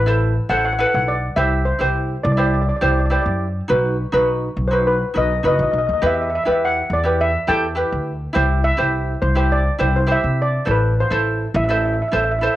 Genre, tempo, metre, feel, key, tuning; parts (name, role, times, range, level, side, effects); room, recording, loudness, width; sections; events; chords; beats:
calypso; 103 BPM; 4/4; straight; A4 = 440 Hz
steel pan; melody; 0.0-12.6 s; B4 to G5; -21 LUFS; left 1 dB; cassette tape
upright bass; bass; 0.0-12.5 s; F#1 to C3; -20 LUFS; equal
ukulele; accompaniment; 0.1-12.6 s; D#4 to C5; -20 LUFS; right 1 dB; cassette tape
light reverb, small room ambience; home recording on cassette; -16 LUFS; side -14 dB against mid
0.0-12.6 A section
0.0 Amadd9; 1.4 C; 3.7 B; 6.0 Em; 8.3 C; 10.7 Am
0.21 0.79 | 1.37 1.96 2.54 3.12 | 3.70 4.28 4.86 5.44 | 6.02 6.61 7.19 7.77 | 8.35 8.93 9.51 10.10 | 10.68 11.26 11.84 12.42